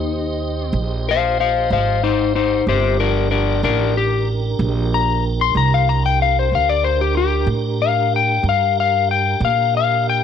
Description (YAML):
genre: slow blues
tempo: 62 BPM (dotted quarters)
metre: 12/8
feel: straight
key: G minor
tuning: A4 = 440 Hz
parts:
  - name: electric slide guitar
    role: melody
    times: 0.0-10.2 s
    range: D4 to C6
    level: -17 LUFS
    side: left 9 dB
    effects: none
  - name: tonewheel organ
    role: sustained chords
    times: 0.0-10.2 s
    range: D4 to Eb5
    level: -26 LUFS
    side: right 3 dB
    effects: chorus vibrato, lush chorus
  - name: upright bass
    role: bass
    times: 0.0-10.2 s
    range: G1 to Bb2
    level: -20 LUFS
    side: right 2 dB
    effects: none
room: light reverb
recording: none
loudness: -15 LUFS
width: side -8 dB against mid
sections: 0.0-10.2 A section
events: electric slide guitar solo 0.0-10.2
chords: 0.0 Cm; 2.7 Gm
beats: 0.74 1.70 | 2.66 3.63 4.59 5.55 | 6.51 7.48 8.44 9.40